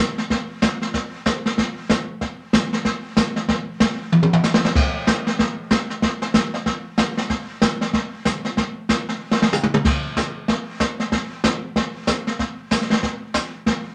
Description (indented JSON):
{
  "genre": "country",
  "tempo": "189 BPM",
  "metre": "4/4",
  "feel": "swing 61% on 8ths",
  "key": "none",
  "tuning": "none",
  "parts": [
    { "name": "jazz brush drum kit", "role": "drums", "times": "0.2-13.9 s", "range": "brushed snare drum, crash cymbal, hi-hat, kick drum, snare drum, toms", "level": "-21 LUFS", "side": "equal", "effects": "none" }
  ],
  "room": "moderate studio reverb, RT60 0.6 s",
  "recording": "none",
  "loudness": "-21 LUFS",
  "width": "mono",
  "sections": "0.0-4.8 A section; 4.8-13.9 A section",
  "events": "drum fill 4.1-4.8, 9.2-9.8",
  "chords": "none"
}